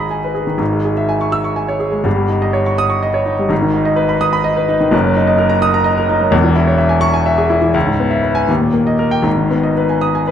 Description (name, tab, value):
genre	classical, virtuoso piano study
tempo	77-87 BPM (dotted quarters)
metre	6/8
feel	rubato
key	G# minor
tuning	A4 = 441 Hz
part	clear grand piano	solo	0.0-10.3 s	E1 to E6	-12 LUFS	equal	none
room	moderate large studio reverb, RT60 1.1 s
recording	none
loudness	-12 LUFS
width	side -9 dB against mid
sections	0.0-10.3 A section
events	none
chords	0.0 G#m; 0.6 C#m/G#; 2.1 D#7/G; 3.5 G#m; 4.9 D#m/F#; 6.3 C#m/E; 7.7 C#m7; 8.5 D#; 9.3 G#m